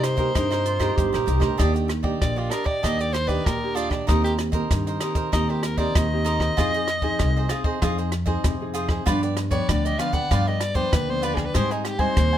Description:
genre	samba and choro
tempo	96 BPM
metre	4/4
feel	straight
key	C minor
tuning	A4 = 440 Hz
part	bright soprano saxophone	melody	0.0-12.4 s	D4 to F#5	-26 LUFS	equal	none
part	cavaquinho	accompaniment	0.0-12.4 s	D4 to Ab5	-29 LUFS	right 4 dB	none
part	nylon-string guitar	accompaniment	0.0-12.4 s	G2 to Ab4	-28 LUFS	left 3 dB	none
part	upright bass	bass	0.0-12.4 s	G1 to C3	-25 LUFS	equal	none
part	compact cocktail drum kit	drums	0.0-12.3 s	hi-hat, kick drum, rim click	-26 LUFS	equal	none
part	warm clarinet	second line	0.6-1.6 s	F4 to G4	-27 LUFS	right 11 dB	none
room	light reverb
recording	minimal, uncompressed stereo recording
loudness	-20 LUFS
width	side -11 dB against mid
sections	0.0-1.6 A section; 1.6-12.4 B section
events	soprano saxophone solo 1.6-12.4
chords	0.0 Cm7; 1.6 Ebmaj7; 4.1 Cm7/Eb; 6.6 Fm7; 9.1 G7; 11.5 Abmaj7

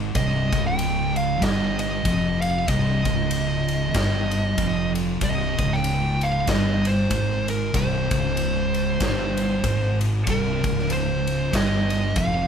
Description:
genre	stoner and doom metal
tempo	95 BPM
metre	4/4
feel	swing 59% on 8ths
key	unclear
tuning	A4 = 440 Hz
part	thick fuzz guitar	riff	0.0-12.5 s	C2 to Ab2	-26 LUFS	left 7 dB	distortion
part	thick fuzz guitar	riff	0.0-12.5 s	C2 to Ab2	-26 LUFS	right 7 dB	distortion
part	fuzz fingered electric bass	bass	0.0-12.5 s	C1 to Ab1	-30 LUFS	left 1 dB	overdrive
part	big rock drum kit	drums	0.1-12.3 s	kick drum, ride cymbal, snare drum	-27 LUFS	left 1 dB	none
part	fuzz lead guitar	melody	0.2-12.5 s	Bb4 to G5	-27 LUFS	right 2 dB	distortion
room	moderate large studio reverb, RT60 0.9 s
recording	band playing live in one room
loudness	-20 LUFS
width	side -7 dB against mid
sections	0.0-12.5 A section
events	none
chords	0.0 C5

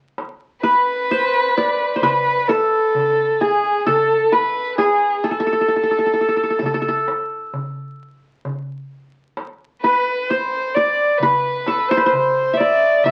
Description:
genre	Arabic maqam ensemble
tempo	131 BPM (eighths)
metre	10/8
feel	straight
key	unclear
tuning	A4 = 440 Hz
part	darbuka	percussion	0.2-13.1 s	none	-32 LUFS	equal	none
part	qanun	melody	0.6-13.1 s	G#4 to E5	-20 LUFS	equal	none
part	rich violin	second line	0.6-13.1 s	G#4 to E5	-21 LUFS	equal	none
room	wet studio reverb, RT60 0.5 s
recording	very old 78 rpm record, vinyl crackle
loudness	-18 LUFS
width	mono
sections	0.0-13.1 A section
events	none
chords	none

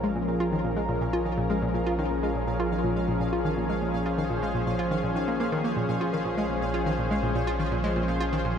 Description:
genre	ambient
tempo	123 BPM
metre	4/4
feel	straight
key	Bb minor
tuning	A4 = 440 Hz
part	lush unison pad	sustained chords	0.0-8.6 s	F3 to C5	-28 LUFS	equal	chorus
part	analog pluck	riff	0.0-8.6 s	Bb2 to F4	-29 LUFS	left 1 dB	chorus, cassette tape, ping-pong delay
part	round analog bass	bass	0.0-8.6 s	Bb1	-34 LUFS	right 1 dB	none
part	pulsing gated texture	texture	0.0-8.6 s	F5	-38 LUFS	left 2 dB	chorus, built-in reverb
room	wet plate reverb, RT60 2.6 s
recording	none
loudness	-24 LUFS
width	side -8 dB against mid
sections	0.0-8.6 A section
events	none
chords	0.0 Bbm7

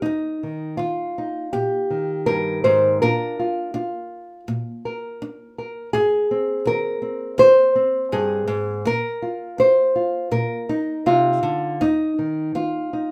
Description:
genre	folk, solo fingerstyle acoustic guitar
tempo	82 BPM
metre	4/4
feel	straight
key	Eb major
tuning	A4 = 442 Hz
part	nylon-string guitar	solo	0.0-13.1 s	Eb2 to C5	-21 LUFS	equal	none
room	moderate studio reverb, RT60 0.6 s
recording	none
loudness	-21 LUFS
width	mono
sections	0.0-13.1 A section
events	none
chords	0.0 Eb; 3.0 Bb; 5.9 Ab; 8.9 Bb; 11.8 N.C.

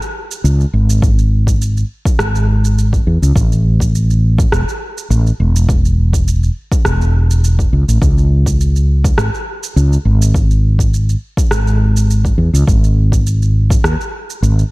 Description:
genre	organic downtempo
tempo	103 BPM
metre	4/4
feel	swing 53% on 16ths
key	C# minor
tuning	A4 = 441 Hz
part	electronic shaker and rim click	drums	0.0-14.7 s	none	-23 LUFS	right 1 dB	overdrive, small room ambience
part	mellow fretless electric bass	bass	0.4-14.6 s	E1 to E2	-11 LUFS	equal	sidechain pumping
part	electronic kick drum	drums	1.0-13.8 s	none	-16 LUFS	equal	overdrive, small room ambience
room	little or no reverb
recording	none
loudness	-11 LUFS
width	side -22 dB against mid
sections	0.0-14.7 A section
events	none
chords	none

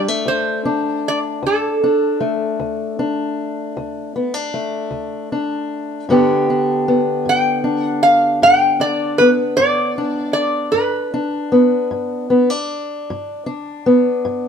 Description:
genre	acoustic country blues, solo or duo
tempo	52 BPM (dotted quarters)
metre	12/8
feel	straight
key	unclear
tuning	A4 = 440 Hz
part	fingerpicked steel-string acoustic guitar	accompaniment	0.0-14.5 s	D2 to G4	-18 LUFS	left 1 dB	none
part	metal-body resonator slide guitar	melody	0.3-11.9 s	A4 to G5	-16 LUFS	right 1 dB	none
room	light reverb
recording	band playing live in one room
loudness	-15 LUFS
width	side -7 dB against mid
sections	0.0-14.5 A section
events	none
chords	0.0 D5; 6.1 G

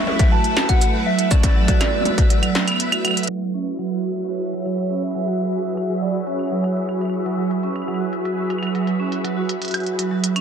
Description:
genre	IDM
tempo	121 BPM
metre	4/4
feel	straight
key	F# minor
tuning	A4 = 440 Hz
part	warbly nostalgic lead	melody	0.0-7.0 s	C#5 to A5	-26 LUFS	right 1 dB	tremolo, wide subtle chorus, dub echo
part	soft string machine	sustained chords	0.0-10.4 s	F#3 to E5	-25 LUFS	left 1 dB	ensemble chorus
part	industrial drum kit	drums	0.0-10.4 s	claves, hi-hat, shaker, snare drum, toms	-23 LUFS	equal	none
part	vibraphone with medium mallets	arpeggios	0.2-10.4 s	F#3 to F#4	-24 LUFS	right 5 dB	low-pass filter, ping-pong delay
part	electronic kick drum	drums	0.2-2.3 s	none	-16 LUFS	left 1 dB	distortion
part	bubbling stepped-filter texture	texture	3.3-10.4 s	E4 to E5	-35 LUFS	equal	chorus, built-in reverb
room	light reverb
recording	dense, heavily limited modern master, low-pass filter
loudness	-18 LUFS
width	side -7 dB against mid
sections	0.0-3.3 A section; 3.3-10.4 B section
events	drum fill 3.0; filter sweep on vibraphone 3.3-10.4; filter sweep 3.3-10.4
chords	0.0 Asus24; 3.3 F#9sus4

